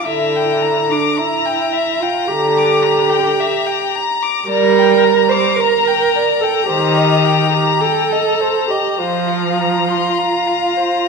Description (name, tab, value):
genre	classical, slow romantic movement for string quartet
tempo	50-55 BPM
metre	4/4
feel	rubato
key	unclear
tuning	A4 = 441 Hz
part	muted violin	melody	0.0-11.1 s	Bb5	-20 LUFS	left 10 dB	none
part	muted violin	second line	0.0-11.1 s	C5 to D6	-20 LUFS	left 4 dB	none
part	muted cello	bass	0.0-11.1 s	D4 to C5	-16 LUFS	right 5 dB	none
part	muted viola	accompaniment	0.1-10.0 s	D3 to G3	-18 LUFS	equal	none
room	wet recital hall reverb, RT60 1.5 s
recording	recorded in a church or concert hall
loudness	-13 LUFS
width	side -4 dB against mid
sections	0.0-11.1 A section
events	none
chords	0.1 Em7b5/D; 4.5 Gm; 6.7 Cm7/Eb; 9.0 Fsus4